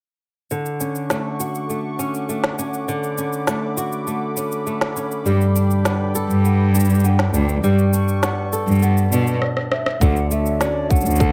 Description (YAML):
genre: folktronica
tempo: 101 BPM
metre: 4/4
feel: straight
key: D major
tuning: A4 = 439 Hz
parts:
  - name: warm analog pad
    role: sustained chords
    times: 0.5-11.3 s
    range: F#4 to D6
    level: -32 LUFS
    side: equal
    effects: chorus, vintage 12-bit sampler grit
  - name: flamenco guitar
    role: arpeggios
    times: 0.5-11.3 s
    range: D3 to A4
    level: -26 LUFS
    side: equal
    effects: low-pass filter, tape echo
  - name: electronic shaker, snare drum and rim click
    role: drums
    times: 0.5-11.3 s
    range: none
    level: -27 LUFS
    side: equal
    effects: none
  - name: clear cello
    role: bass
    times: 5.3-11.3 s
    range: D2 to B2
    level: -20 LUFS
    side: equal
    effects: none
  - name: baroque flute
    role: melody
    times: 9.4-11.3 s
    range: D5 to F#5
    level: -27 LUFS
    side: equal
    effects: none
  - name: electronic kick drum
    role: drums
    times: 10.0-11.3 s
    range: none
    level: -19 LUFS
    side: equal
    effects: none
room: light reverb, studio reverb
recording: none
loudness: -20 LUFS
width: mono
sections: 0.5-10.0 A section; 10.0-11.3 B section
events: drum fill 9.4-10.0; stop 9.4-10.0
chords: 0.5 Dmaj7; 5.3 Gadd9; 10.0 Dmaj7